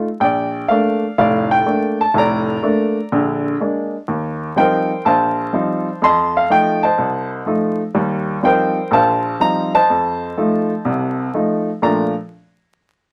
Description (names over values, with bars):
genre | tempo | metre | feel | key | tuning
solo jazz | 124 BPM | 4/4 | swing 67% on 8ths | Bb major | A4 = 437 Hz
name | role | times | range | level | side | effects
warm upright piano | solo | 0.0-12.1 s | F1 to C6 | -17 LUFS | equal | none
room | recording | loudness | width
moderate studio reverb, RT60 0.5 s | vinyl crackle | -17 LUFS | mono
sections
0.0-4.1 A section; 4.1-11.8 B section; 11.8-13.1 C section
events
none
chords
0.2 Bbmaj7; 3.1 Bb7; 4.1 Eb69; 6.0 F7; 7.9 Eb69; 9.9 F7; 11.8 Bbmaj7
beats
| 0.21 0.70 1.18 1.66 | 2.15 2.63 3.11 3.60 | 4.08 4.56 5.05 5.53 | 6.01 6.50 6.98 7.46 | 7.95 8.43 8.91 9.40 | 9.88 10.37 10.86 11.34 | 11.83